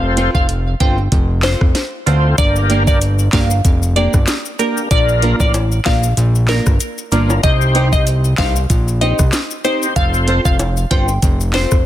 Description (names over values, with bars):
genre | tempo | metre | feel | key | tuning
dancehall | 95 BPM | 4/4 | swing 56% on 16ths | unclear | A4 = 440 Hz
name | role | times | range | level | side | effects
overdriven tonewheel organ | accompaniment | 0.0-10.6 s | Bb3 to C5 | -21 LUFS | left 1 dB | chorus vibrato, slow rotary speaker, sidechain pumping
fat analog bass | bass | 0.0-11.8 s | F1 to D2 | -15 LUFS | equal | none
nylon-string guitar | arpeggios | 0.2-11.7 s | Bb3 to C5 | -23 LUFS | right 4 dB | digital delay
afro-pop drum kit | drums | 0.2-11.8 s | handclaps, hi-hat, kick drum, rim click, snare drum | -16 LUFS | equal | none
glassy wavetable pluck | melody | 0.3-11.7 s | Bb4 to G5 | -21 LUFS | left 1 dB | chorus, digital delay
maracas and timbales | percussion | 2.4-11.8 s | none | -26 LUFS | left 5 dB | none
room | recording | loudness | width
digital ambience | dense, heavily limited modern master | -12 LUFS | side -13 dB against mid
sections
0.0-11.9 A section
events
none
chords
0.0 F; 2.4 Gm; 4.9 Bb; 7.4 Cm; 10.0 F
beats
0.49 1.12 1.75 | 2.38 3.01 3.65 4.28 | 4.91 5.54 6.17 6.80 | 7.43 8.07 8.70 9.33 | 9.96 10.59 11.22